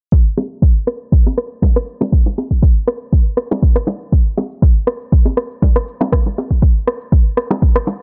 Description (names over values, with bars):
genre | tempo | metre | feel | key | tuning
afro house | 120 BPM | 4/4 | swing 53% on 16ths | none | none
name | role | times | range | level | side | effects
electronic cabasa and rim click | drums | 0.1-8.0 s | none | -20 LUFS | equal | none
electronic kick drum | drums | 0.1-7.7 s | none | -14 LUFS | equal | none
bongos | percussion | 0.4-8.0 s | none | -22 LUFS | equal | none
room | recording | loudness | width
little or no reverb | low-pass filter, nothing above 10.8 kHz | -15 LUFS | mono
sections
0.1-8.0 A section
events
filter sweep 0.1-8.0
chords
none